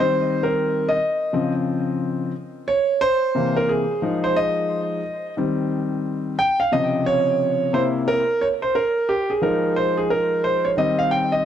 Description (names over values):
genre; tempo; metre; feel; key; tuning
hip hop; 89 BPM; 4/4; swing 62% on 16ths; Eb mixolydian; A4 = 440 Hz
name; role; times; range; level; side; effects
warm concert grand piano; solo; 0.0-11.4 s; C3 to G5; -19 LUFS; equal; tape echo
room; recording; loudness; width
moderate studio reverb, RT60 0.7 s; dark, warm production; -19 LUFS; side -9 dB against mid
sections
0.0-11.4 A section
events
grand piano solo 0.0-11.4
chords
0.0 Eb6; 1.3 Dbmaj7; 2.3 C7; 4.0 Fm7; 5.4 Eb6; 6.7 Dbmaj7; 7.7 C7; 9.4 Fm7; 10.8 Eb6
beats
0.66 1.33 2.00 | 2.68 3.35 4.03 4.70 | 5.38 6.05 6.72 7.40 | 8.07 8.75 9.42 10.09 | 10.77 11.44